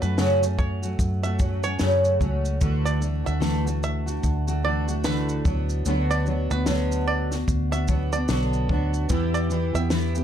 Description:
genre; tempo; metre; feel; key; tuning
acoustic pop; 74 BPM; 4/4; swing 60% on 16ths; unclear; A4 = 444 Hz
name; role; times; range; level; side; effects
fingerpicked steel-string acoustic guitar; accompaniment; 0.0-10.2 s; F#2 to G4; -26 LUFS; equal; double-tracked left and right, plate reverb
bluegrass banjo; arpeggios; 0.0-10.1 s; B4 to E5; -30 LUFS; right 5 dB; plate reverb
vintage muted fingered electric bass; bass; 0.0-10.2 s; B1 to F#2; -25 LUFS; equal; none
compact cocktail drum kit; drums; 0.0-10.2 s; kick drum, shaker, snare drum; -27 LUFS; equal; none
room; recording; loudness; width
light reverb; dark, warm production; -21 LUFS; side -9 dB against mid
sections
0.0-10.2 A section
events
none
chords
0.0 F#m; 2.6 Dadd9; 5.5 Bm/D; 9.1 Em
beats
0.18 0.99 1.81 | 2.62 3.43 4.24 5.05 | 5.86 6.67 7.48 8.29 | 9.10 9.91

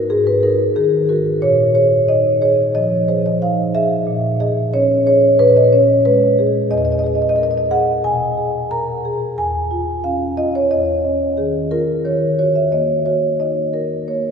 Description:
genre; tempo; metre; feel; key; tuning
classical, contemporary piece for solo marimba; 90 BPM; 4/4; straight; unclear; A4 = 439 Hz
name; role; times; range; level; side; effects
marimba with soft mallets; solo; 0.0-14.3 s; E2 to A#5; -14 LUFS; equal; none
room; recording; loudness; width
wet church reverb, RT60 3.4 s; recorded in a church or concert hall, lossy compression artefacts; -14 LUFS; side -6 dB against mid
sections
0.0-14.3 A section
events
none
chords
0.0 D#m/G#; 1.4 A#7sus4; 4.1 C#5/A#; 6.7 Emaj7#11; 9.4 C#add9/E; 12.0 D#m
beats
0.11 0.77 | 1.43 2.09 2.76 3.42 | 4.07 4.73 5.39 6.05 | 6.71 7.37 8.04 8.71 | 9.37 10.04 10.71 11.37 | 12.04 12.71 13.39 14.07

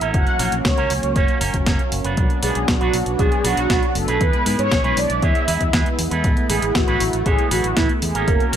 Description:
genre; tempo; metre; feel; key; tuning
italo disco; 118 BPM; 4/4; straight; unclear; A4 = 435 Hz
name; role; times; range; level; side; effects
mellow synth brass; melody; 0.0-8.6 s; E4 to F#5; -22 LUFS; right 1 dB; chorus, vintage 12-bit sampler grit, digital delay
warm analog pad; sustained chords; 0.0-8.6 s; F#3 to F#4; -26 LUFS; equal; chorus
electric guitar with an envelope filter; stabs; 0.0-8.6 s; A#3 to C#5; -26 LUFS; right 4 dB; digital delay
fingered electric bass; bass; 0.0-8.6 s; F#1 to G#2; -25 LUFS; equal; tube saturation
clean 12-bit digital drum machine; drums; 0.0-8.6 s; hi-hat, snare drum; -24 LUFS; equal; overdrive
electronic kick drum; drums; 0.1-8.4 s; none; -21 LUFS; equal; none
room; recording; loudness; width
light reverb; none; -16 LUFS; side -9 dB against mid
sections
0.0-8.6 A section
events
none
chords
0.1 F#; 2.2 Bm; 4.2 E; 6.2 Asus2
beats
| 0.14 0.65 1.16 1.67 | 2.17 2.68 3.19 3.70 | 4.21 4.72 5.23 5.73 | 6.24 6.75 7.26 7.77 | 8.28

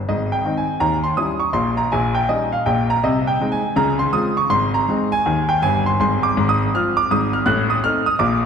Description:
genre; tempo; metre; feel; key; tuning
jazz, stride piano; 162 BPM; 4/4; swing 64% on 8ths; Ab major; A4 = 440 Hz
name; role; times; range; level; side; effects
bright grand piano; solo; 0.1-8.5 s; G1 to Gb6; -16 LUFS; equal; none
room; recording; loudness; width
wet concert hall reverb, RT60 2.4 s; recorded in a church or concert hall; -16 LUFS; side -7 dB against mid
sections
0.1-8.5 A section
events
none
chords
0.1 Ab; 0.8 Eb7b9; 1.6 Eb7/Bb; 3.0 Ab/C; 3.8 Dbmaj7; 4.5 Ab; 6.0 Fm/Ab; 7.5 Adim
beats
| 0.07 0.44 0.81 1.18 | 1.55 1.92 2.29 2.66 | 3.03 3.40 3.77 4.14 | 4.51 4.88 5.25 5.61 | 5.98 6.35 6.72 7.09 | 7.46 7.83 8.20

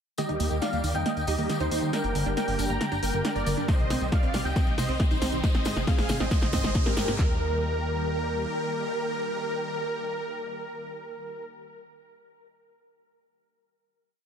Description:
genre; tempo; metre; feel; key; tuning
uplifting trance; 137 BPM; 4/4; straight; Eb major; A4 = 439 Hz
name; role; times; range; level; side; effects
dense compressed supersaw; melody; 0.2-11.4 s; Eb4 to Bb5; -31 LUFS; equal; cassette tape, sidechain pumping, low-pass filter, ping-pong delay
plucky unison lead; second line; 0.2-11.5 s; Bb4 to Bb5; -37 LUFS; equal; analog chorus, sidechain pumping, ping-pong delay
analog string pad; sustained chords; 0.2-11.5 s; D3 to Ab4; -35 LUFS; equal; ensemble chorus, sidechain pumping
wide unison pluck; arpeggios; 0.2-7.4 s; C3 to Eb4; -33 LUFS; right 2 dB; sidechain pumping, ping-pong delay
techno drum kit; drums; 0.2-7.2 s; hi-hat, snare drum; -33 LUFS; equal; overdrive
tambourine; percussion; 0.2-7.2 s; none; -41 LUFS; left 4 dB; none
riser; sound effects; 3.2-7.2 s; none; -40 LUFS; right 1 dB; none
plucky analog bass; bass; 0.3-8.5 s; G1 to F2; -31 LUFS; equal; sidechain pumping
punchy analog drum machine; drums; 3.7-7.3 s; handclaps, kick drum, snare drum; -25 LUFS; equal; none
room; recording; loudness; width
digital ambience; none; -24 LUFS; side -8 dB against mid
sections
0.2-7.2 build; 7.2-10.7 final chord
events
build-up 0.2-7.2; drum fill 0.2-7.2; filter sweep on supersaw synth 0.2-7.2; filter sweep on synth pluck 0.2-7.2; filter sweep on digital synth lead 0.2-7.2; riser 3.2-7.2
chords
0.2 Eb; 1.9 Gm; 3.7 Cm; 5.4 Ab; 7.2 Eb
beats
| 0.18 0.62 1.06 1.50 | 1.93 2.37 2.81 3.25 | 3.69 4.12 4.56 5.00 | 5.44 5.87 6.31 6.75 | 7.19 7.63 8.06 8.50 | 8.94 9.38 9.82 10.25

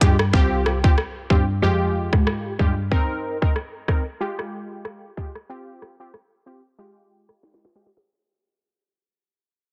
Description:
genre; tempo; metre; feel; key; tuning
dancehall; 93 BPM; 4/4; swing 56% on 16ths; F minor; A4 = 440 Hz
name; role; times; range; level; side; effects
synth brass stab; accompaniment; 0.0-7.9 s; Ab3 to Bb4; -29 LUFS; equal; chorus, sidechain pumping
bright cello; bass; 0.0-2.9 s; C2 to Ab2; -25 LUFS; equal; none
island pop drum kit; drums; 0.0-8.1 s; hi-hat, kick drum, rim click, snare drum; -22 LUFS; equal; overdrive
room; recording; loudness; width
digital ambience; dense, heavily limited modern master, low-pass filter; -21 LUFS; mono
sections
0.0-8.1 A section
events
fade-out 0.0-8.1; filter sweep 0.0-8.1; drum fill 7.4-8.1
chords
0.3 Csus4; 1.6 Fmadd9; 2.9 Cm7; 4.2 Fmadd9; 5.5 Csus4; 6.8 Fmadd9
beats
| 0.34 0.98 1.62 2.27 | 2.92 3.56 4.21 4.85 | 5.50 6.14 6.79 7.43

